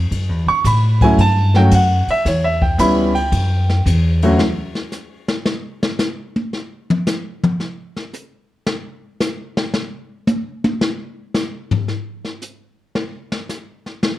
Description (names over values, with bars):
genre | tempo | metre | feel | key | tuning
jazz piano trio | 112 BPM | 4/4 | swing 68% on 8ths | unclear | A4 = 440 Hz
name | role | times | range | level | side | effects
upright bass | bass | 0.0-4.4 s | C#2 to A2 | -16 LUFS | equal | none
jazz brush drum kit | drums | 0.1-14.2 s | hi-hat, kick drum, ride cymbal, snare drum, toms | -21 LUFS | left 2 dB | none
warm grand piano | melody | 0.5-4.4 s | D2 to C#6 | -16 LUFS | equal | plate reverb
room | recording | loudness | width
light reverb | worn, warbling old tape, cassette tape, warbly pitch drift | -16 LUFS | side -15 dB against mid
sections
0.0-4.4 A section; 4.4-14.2 A section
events
grand piano solo 0.0-4.4; drum solo 4.4-14.2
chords
0.1 F#m7; 2.3 A7 (rootless); 4.4 N.C.